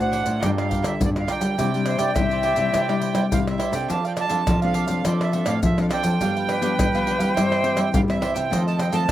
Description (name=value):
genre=samba and choro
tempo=104 BPM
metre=4/4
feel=straight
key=unclear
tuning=A4 = 440 Hz
part: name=accordion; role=melody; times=0.0-9.1 s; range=D5 to A5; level=-27 LUFS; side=right 6 dB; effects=none
part: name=cavaquinho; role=accompaniment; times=0.0-9.0 s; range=D4 to G5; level=-28 LUFS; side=right 6 dB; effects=slapback echo
part: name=nylon-string guitar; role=accompaniment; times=0.0-9.1 s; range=F2 to C5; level=-28 LUFS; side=left 6 dB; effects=slapback echo
part: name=nylon-string guitar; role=bass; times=0.0-9.1 s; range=G2 to G3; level=-24 LUFS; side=equal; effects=none
part: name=maracas, pandeiro, surdo and tamborim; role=percussion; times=0.0-9.1 s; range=none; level=-26 LUFS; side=left 1 dB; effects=none
part: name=breathy bright jazz flute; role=second line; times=1.9-7.8 s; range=B4 to E5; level=-24 LUFS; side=left 4 dB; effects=slapback echo
room=little or no reverb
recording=recorded outdoors, with no room sound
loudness=-19 LUFS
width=side -12 dB against mid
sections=0.0-9.1 A section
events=none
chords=0.4 Gm7; 1.6 Cadd9; 3.9 F6; 5.1 Dm7; 6.2 G7; 7.4 C/G; 8.5 F7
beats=0.43 1.01 | 1.59 2.17 2.75 3.33 | 3.90 4.48 5.06 5.64 | 6.21 6.79 7.37 7.95 | 8.52 9.10